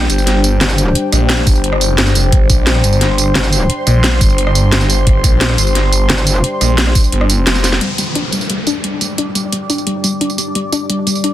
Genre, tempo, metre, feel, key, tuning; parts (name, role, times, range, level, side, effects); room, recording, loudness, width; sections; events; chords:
dark technical drum and bass; 175 BPM; 4/4; straight; G minor; A4 = 440 Hz
sweeping resonant pad; sustained chords; 0.0-11.3 s; G3 to C6; -22 LUFS; right 1 dB; lush chorus, sidechain pumping
phased detuned saw bass; bass; 0.0-7.8 s; F1 to Bb1; -13 LUFS; equal; phaser, overdrive
drum and bass drum kit; drums; 0.0-11.3 s; hi-hat, rim click, snare drum, tambourine; -16 LUFS; right 1 dB
warbly tape-like pad; texture; 0.0-11.3 s; G3 to D6; -22 LUFS; left 2 dB; chorus, built-in reverb, sidechain pumping
metallic wobble bass; bass; 0.6-0.9, 3.4-3.7, 6.1-6.4 s; G1; -14 LUFS; equal; distortion, chorus, tube saturation
electronic kick drum; drums; 1.5-7.0 s; -11 LUFS; equal
soft round pluck; arpeggios; 7.8-11.3 s; G3 to D4; -18 LUFS; left 3 dB; wide subtle chorus, sidechain pumping, dub echo
downlifter; sound effects; 7.8-10.6 s; -24 LUFS; equal
light reverb; dense, heavily limited modern master; -11 LUFS; side -13 dB against mid
0.0-7.8 A section; 7.8-11.3 B section
drop 0.0-7.8; drum fill 7.6; filter sweep on analog synth pad 7.8-11.3
0.0 G5